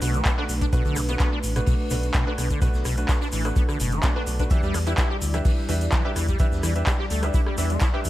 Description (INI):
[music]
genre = acid house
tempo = 127 BPM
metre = 4/4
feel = straight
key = B minor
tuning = A4 = 439 Hz
[part]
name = dark analog pad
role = sustained chords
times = 0.0-8.1 s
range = G3 to D5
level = -33 LUFS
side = left 1 dB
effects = chorus, sidechain pumping
[part]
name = acid bass, saw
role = riff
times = 0.0-8.0 s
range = B2 to G4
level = -30 LUFS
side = equal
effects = overdrive, ensemble chorus, analog delay
[part]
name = bright grand piano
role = stabs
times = 0.0-8.1 s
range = A3 to E5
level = -32 LUFS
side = right 2 dB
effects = analog delay
[part]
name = round analog bass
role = bass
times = 0.0-8.1 s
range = F#1 to E2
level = -26 LUFS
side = equal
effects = sidechain pumping
[part]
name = booming analog drum machine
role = drums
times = 0.0-8.1 s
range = handclaps, hi-hat, rim click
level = -30 LUFS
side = equal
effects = overdrive
[part]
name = raw garage drum kit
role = drums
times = 0.0-8.1 s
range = hi-hat, shaker, snare drum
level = -42 LUFS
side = equal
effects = none
[part]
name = egg shaker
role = percussion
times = 0.0-8.1 s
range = none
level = -38 LUFS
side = left 4 dB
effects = none
[part]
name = electronic kick drum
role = drums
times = 0.3-7.9 s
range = none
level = -23 LUFS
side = equal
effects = none
[sound]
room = studio reverb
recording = none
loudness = -21 LUFS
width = side -15 dB against mid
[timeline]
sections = 0.0-8.1 A section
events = none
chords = 0.0 Bm7; 4.5 Em7